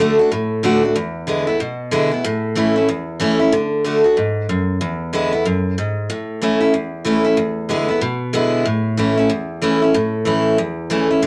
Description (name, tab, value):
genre	rock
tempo	187 BPM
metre	4/4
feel	swing 61% on 8ths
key	A major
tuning	A4 = 440 Hz
part	picked steel-string acoustic guitar	solo	0.0-11.3 s	E2 to F#4	-18 LUFS	equal	none
room	moderate studio reverb, RT60 0.5 s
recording	none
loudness	-18 LUFS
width	mono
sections	0.0-3.5 A section; 3.5-11.3 B section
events	none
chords	0.0 D; 1.0 E7; 2.2 A; 3.5 D; 4.8 E7; 6.1 A; 7.4 E7; 8.7 A